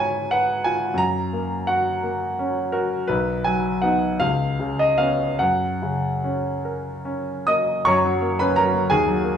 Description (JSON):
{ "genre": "classical, romantic character piece for solo piano", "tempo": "47-60 BPM (dotted quarters)", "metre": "6/8", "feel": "rubato", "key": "F# major", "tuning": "A4 = 441 Hz", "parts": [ { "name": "clear grand piano", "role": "solo", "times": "0.0-9.4 s", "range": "B1 to D#6", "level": "-19 LUFS", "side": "equal", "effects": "none" } ], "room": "wet large studio reverb, RT60 0.8 s", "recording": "heard from further back in the room", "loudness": "-19 LUFS", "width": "side -8 dB against mid", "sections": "0.0-7.9 A section; 7.9-9.4 B section", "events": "none", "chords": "0.0 C#7/G#; 1.0 F#; 3.1 B; 4.2 C#7; 5.4 F#", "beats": "| 0.99 2.03 | 3.08 4.20 | 5.41 6.66 | 7.86 8.90" }